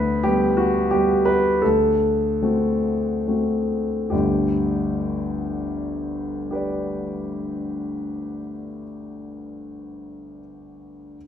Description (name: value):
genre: classical, romantic nocturne for solo piano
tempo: 22-32 BPM (dotted quarters)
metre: 6/8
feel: rubato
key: G major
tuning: A4 = 439 Hz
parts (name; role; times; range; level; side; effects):
- warm grand piano; solo; 0.0-11.2 s; G1 to D5; -21 LUFS; left 1 dB; none
room: wet recital hall reverb, RT60 1.4 s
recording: minimal, uncompressed stereo recording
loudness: -20 LUFS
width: side -9 dB against mid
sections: 0.0-4.1 A section; 4.1-8.9 B section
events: slowing down 0.0-4.1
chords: 0.0 G/D; 1.6 D7; 4.1 G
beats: 1.62 | 4.12 6.50